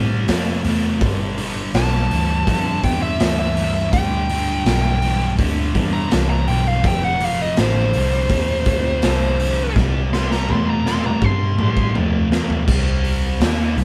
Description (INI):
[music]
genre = blues rock power trio and southern rock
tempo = 82 BPM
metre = 4/4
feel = straight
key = C major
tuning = A4 = 440 Hz
[part]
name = sludgy distorted guitar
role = riff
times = 0.0-13.8 s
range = F2 to Eb4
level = -25 LUFS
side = equal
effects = overdrive
[part]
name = vintage muted picked electric bass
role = bass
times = 0.0-13.8 s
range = F1 to A2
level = -23 LUFS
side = equal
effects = none
[part]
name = raw garage drum kit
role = drums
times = 0.3-13.8 s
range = crash cymbal, hi-hat, kick drum, snare drum, toms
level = -24 LUFS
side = equal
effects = none
[part]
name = bluesy overdriven lead guitar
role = melody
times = 1.8-11.9 s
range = C5 to C6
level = -25 LUFS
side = equal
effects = distortion
[sound]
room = moderate stone room reverb, RT60 1.1 s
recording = band playing live in one room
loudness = -19 LUFS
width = mono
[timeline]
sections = 0.0-12.7 A section; 12.7-13.8 B section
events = lead electric guitar solo 0.0-12.7; drum fill 9.8-12.7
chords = 0.0 C; 1.0 G; 6.8 F5; 9.8 C; 12.7 C5